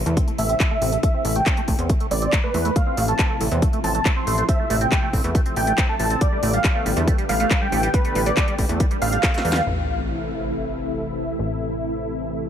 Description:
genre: uplifting trance.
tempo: 139 BPM.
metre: 4/4.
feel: straight.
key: A minor.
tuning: A4 = 440 Hz.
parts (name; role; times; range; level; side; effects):
analog string pad; sustained chords; 0.0-12.5 s; C3 to G4; -28 LUFS; left 1 dB; ensemble chorus, sidechain pumping.
plucky analog bass; bass; 0.0-12.5 s; A1 to E2; -24 LUFS; equal; sidechain pumping.
liquid acid bass; arpeggios; 0.1-9.6 s; G3 to C4; -29 LUFS; right 3 dB; phaser, wide subtle chorus, sidechain pumping, ping-pong delay.
house drum kit; drums; 0.1-9.6 s; handclaps, hi-hat, snare drum; -27 LUFS; equal; low-pass filter on hats, low-pass filter on snare.
electronic kick drum; drums; 0.2-9.3 s; none; -20 LUFS; equal; none.
dense compressed supersaw; melody; 0.4-9.6 s; B4 to C6; -25 LUFS; right 1 dB; sidechain pumping, low-pass filter, ping-pong delay.
sub drop; sound effects; 9.7-11.4 s; none; -30 LUFS; equal; none.
room: little or no reverb.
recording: none.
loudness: -18 LUFS.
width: side -9 dB against mid.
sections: 0.0-9.7 A section; 9.7-12.5 B section.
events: filter sweep on acid bass 0.0-9.7; filter sweep on analog synth pad 0.0-9.7; drum fill 9.2-9.7; band accent 9.5; impact 9.7-11.4; filter sweep on drum 9.7-12.5.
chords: 0.0 Am; 2.8 Fmaj7/A; 6.2 Gadd9/A; 9.7 Am.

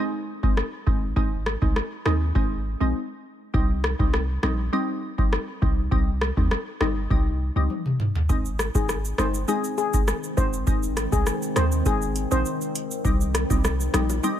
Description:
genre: dancehall.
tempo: 101 BPM.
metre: 4/4.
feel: straight.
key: Ab major.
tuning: A4 = 441 Hz.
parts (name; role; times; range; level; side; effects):
glassy wavetable pluck; accompaniment; 0.0-14.4 s; G3 to Eb4; -28 LUFS; equal; chorus, sidechain pumping.
booming analog drum machine; drums; 0.4-14.4 s; hi-hat, kick drum, rim click, shaker, toms; -24 LUFS; equal; overdrive.
warm 808-style bass; bass; 0.9-14.2 s; G1 to Eb2; -25 LUFS; equal; none.
deep dark ambient pad; sustained chords; 9.1-14.4 s; Eb3 to C4; -31 LUFS; left 1 dB; chorus, built-in reverb, sidechain pumping.
steel pan; melody; 8.8-12.4 s; Ab4 to C5; -28 LUFS; left 4 dB; none.
bongos; percussion; 13.5-14.2 s; none; -38 LUFS; left 9 dB; none.
room: little or no reverb.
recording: none.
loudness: -22 LUFS.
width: side -10 dB against mid.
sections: 0.0-8.3 A section; 8.3-14.4 B section.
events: drum fill 7.7-8.3.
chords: 0.0 Ab; 3.5 Cm; 8.3 Ab; 13.0 Cm.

